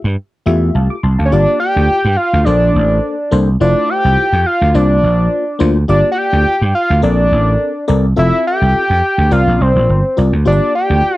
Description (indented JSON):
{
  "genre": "early-eighties boogie funk",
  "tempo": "105 BPM",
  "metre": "4/4",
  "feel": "straight",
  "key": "G dorian",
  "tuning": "A4 = 439 Hz",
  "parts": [
    { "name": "vintage slap bass", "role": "bass", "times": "0.0-11.1 s", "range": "F1 to G2", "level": "-12 LUFS", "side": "right 1 dB", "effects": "none" },
    { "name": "FM electric piano", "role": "accompaniment", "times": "0.5-11.2 s", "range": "A3 to D6", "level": "-19 LUFS", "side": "left 4 dB", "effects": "chorus" },
    { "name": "fat analog lead", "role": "melody", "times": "1.3-11.2 s", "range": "C5 to G5", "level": "-14 LUFS", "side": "equal", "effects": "slapback echo" }
  ],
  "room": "little or no reverb",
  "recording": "dry, close 1970s-style studio recording",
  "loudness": "-11 LUFS",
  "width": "side -17 dB against mid",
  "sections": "0.0-1.3 A section; 1.3-11.2 B section",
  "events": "none",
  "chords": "0.0 Fmaj9; 1.3 Gm7; 2.5 Bbmaj9; 3.6 Fmaj7; 4.7 C9sus4; 5.9 Gm7; 7.0 Bbmaj9; 8.2 Fmaj7; 9.3 C9sus4; 10.5 Gm7"
}